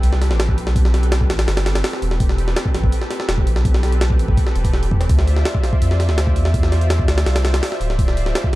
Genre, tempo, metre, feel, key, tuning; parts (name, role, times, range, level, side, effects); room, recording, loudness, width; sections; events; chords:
drum and bass, jungle; 166 BPM; 4/4; straight; A minor; A4 = 437 Hz
lush unison pad; sustained chords; 0.0-8.6 s; C4 to E5; -27 LUFS; equal; chorus
saturated sub bass; bass; 0.0-8.6 s; D1 to F2; -17 LUFS; equal
jungle sampler-style drum kit; drums; 0.0-8.6 s; hi-hat, kick drum, snare drum; -18 LUFS; equal
sub drop; sound effects; 0.0-0.8 s; barely audible
digital ambience; dark, warm production; -15 LUFS; side -18 dB against mid
0.0-8.6 A section
impact 0.0-0.8
0.0 Am9; 5.1 Dm9